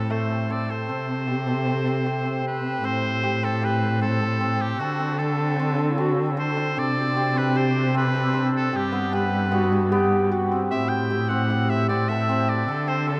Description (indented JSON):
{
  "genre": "contemporary instrumental, chamber music in an uneven meter",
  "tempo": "153 BPM",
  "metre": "5/4",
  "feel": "straight",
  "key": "unclear",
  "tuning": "A4 = 441 Hz",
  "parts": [
    { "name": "bright oboe", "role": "melody", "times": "0.0-13.2 s", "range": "F#4 to G5", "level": "-31 LUFS", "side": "equal", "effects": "none" },
    { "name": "hammered dulcimer", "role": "arpeggios", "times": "0.0-13.2 s", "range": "A3 to A4", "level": "-28 LUFS", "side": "equal", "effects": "none" },
    { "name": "dark cello", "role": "bass", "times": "0.0-13.2 s", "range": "G2 to D3", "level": "-27 LUFS", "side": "equal", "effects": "none" },
    { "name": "mellow clarinet", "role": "second line", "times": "5.6-6.3, 9.5-10.6 s", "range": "D4 to G4", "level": "-31 LUFS", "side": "equal", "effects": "none" }
  ],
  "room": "wet huge ambient reverb, RT60 8.9 s",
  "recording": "in a vast, echoing space",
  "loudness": "-23 LUFS",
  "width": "mono",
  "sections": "0.0-2.8 A section; 2.8-13.2 B section",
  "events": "none",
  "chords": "0.0 Am; 0.9 C5; 2.8 Am7; 4.8 D7; 6.8 Csus2; 8.7 Gmaj7; 10.7 Am7; 12.7 D5"
}